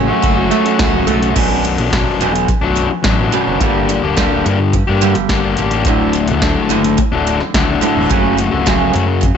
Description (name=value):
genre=quiet-loud alternative rock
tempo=107 BPM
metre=4/4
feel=straight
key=B minor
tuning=A4 = 435 Hz
part: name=picked steel-string acoustic guitar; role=arpeggios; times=0.0-9.4 s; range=D2 to F#4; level=-19 LUFS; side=right 14 dB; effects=tape echo
part: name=fuzz guitar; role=riff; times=0.0-9.4 s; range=B1 to G4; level=-15 LUFS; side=left 7 dB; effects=distortion
part: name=overdriven fingered electric bass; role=bass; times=0.0-9.3 s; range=B0 to G2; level=-20 LUFS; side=equal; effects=none
part: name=electro analog drum machine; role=drums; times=0.2-9.4 s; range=crash cymbal, hi-hat, kick drum, snare drum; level=-18 LUFS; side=right 1 dB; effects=none
room=light reverb, digital ambience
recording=nothing above 8.0 kHz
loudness=-12 LUFS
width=side -7 dB against mid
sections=0.0-1.4 A section; 1.4-9.4 B section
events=none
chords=0.0 F#m; 1.4 Bm; 3.6 Gm; 5.9 D; 8.1 F#m